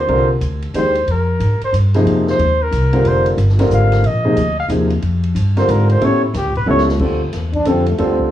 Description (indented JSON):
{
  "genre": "modal jazz",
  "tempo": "182 BPM",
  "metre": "3/4",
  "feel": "swing 64% on 8ths",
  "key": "F dorian",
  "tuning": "A4 = 440 Hz",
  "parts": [
    { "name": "mellow trumpet", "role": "melody", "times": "0.0-6.8 s", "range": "E4 to F5", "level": "-19 LUFS", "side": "equal", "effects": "none" },
    { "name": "upright bass", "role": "bass", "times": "0.0-8.3 s", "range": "F1 to A2", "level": "-16 LUFS", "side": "equal", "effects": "none" },
    { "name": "warm grand piano", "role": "accompaniment", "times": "0.1-8.3 s", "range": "C3 to C5", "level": "-17 LUFS", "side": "equal", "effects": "cassette tape" },
    { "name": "open jazz drum kit", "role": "drums", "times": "0.1-8.3 s", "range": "crash cymbal, hi-hat, kick drum, ride cymbal, snare drum", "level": "-30 LUFS", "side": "left 1 dB", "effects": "none" },
    { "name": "breathy trombone", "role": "second line", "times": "7.5-8.2 s", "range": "A3 to D4", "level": "-19 LUFS", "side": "left 3 dB", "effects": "cassette tape" }
  ],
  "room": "light reverb",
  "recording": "home recording on cassette, small room ambience",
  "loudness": "-13 LUFS",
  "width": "side -12 dB against mid",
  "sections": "0.0-7.0 A section; 7.0-8.3 A section",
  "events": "trumpet solo 0.0-7.0; drum fill 6.7-7.0; trombone solo 7.0-8.3",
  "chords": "0.0 F9sus4; 6.0 A7; 7.0 Dm11"
}